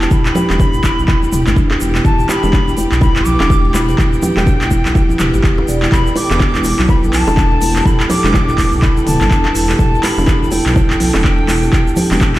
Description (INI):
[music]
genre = afro house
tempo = 124 BPM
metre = 4/4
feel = swing 60% on 16ths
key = E minor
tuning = A4 = 440 Hz
[part]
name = jazz flute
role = melody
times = 0.0-12.4 s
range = G5 to D6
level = -22 LUFS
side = left 1 dB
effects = ping-pong delay
[part]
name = dark studio string section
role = sustained chords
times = 0.0-12.4 s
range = E3 to G5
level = -24 LUFS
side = right 1 dB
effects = sidechain pumping
[part]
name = marimba with soft mallets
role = arpeggios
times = 0.0-12.4 s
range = D4 to D5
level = -19 LUFS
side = right 1 dB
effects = sidechain pumping, ping-pong delay
[part]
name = dark detuned saw bass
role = bass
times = 0.0-12.4 s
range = D1 to B1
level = -17 LUFS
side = equal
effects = sidechain pumping
[part]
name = deep house drum kit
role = drums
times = 0.0-12.4 s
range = handclaps, hi-hat, toms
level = -20 LUFS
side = equal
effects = studio reverb
[part]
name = congas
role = percussion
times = 0.0-12.3 s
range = none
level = -23 LUFS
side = left 1 dB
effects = none
[part]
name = egg shaker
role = percussion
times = 0.0-12.4 s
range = none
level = -31 LUFS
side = right 1 dB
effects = none
[part]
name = electronic kick drum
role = drums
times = 0.1-12.3 s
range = none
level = -14 LUFS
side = equal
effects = studio reverb
[part]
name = bongos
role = percussion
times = 0.4-12.3 s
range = none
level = -23 LUFS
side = right 2 dB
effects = none
[sound]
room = small room ambience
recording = played on a big sound system in a bare room, stone room reverb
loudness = -11 LUFS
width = side -16 dB against mid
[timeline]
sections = 0.0-12.4 A section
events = none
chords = 0.0 Em7